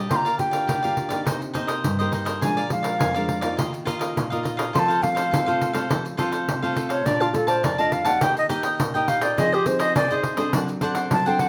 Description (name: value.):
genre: samba and choro.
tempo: 104 BPM.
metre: 4/4.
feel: straight.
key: Bb major.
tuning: A4 = 440 Hz.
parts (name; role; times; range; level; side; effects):
cavaquinho; accompaniment; 0.0-11.5 s; D4 to A5; -30 LUFS; equal; none.
nylon-string guitar; accompaniment; 0.0-11.5 s; F2 to A4; -30 LUFS; equal; none.
wooden flute; melody; 0.1-11.5 s; F4 to C6; -25 LUFS; equal; none.
pandeiro; percussion; 0.1-11.5 s; none; -29 LUFS; equal; none.
room: moderate large studio reverb, RT60 0.8 s.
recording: none.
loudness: -23 LUFS.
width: mono.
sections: 0.0-11.5 A section.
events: flute solo 0.0-11.5.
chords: 0.1 Gm7/D; 1.3 Cm7; 2.4 Bb7; 3.6 Ebsus2; 4.7 F; 7.1 Bbmaj7; 8.2 Eb; 9.4 Fm7; 10.5 D7/F#.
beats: | 0.11 0.69 1.27 1.84 | 2.42 3.00 3.58 4.16 | 4.74 5.32 5.90 6.48 | 7.06 7.64 8.22 8.80 | 9.38 9.96 10.54 11.12.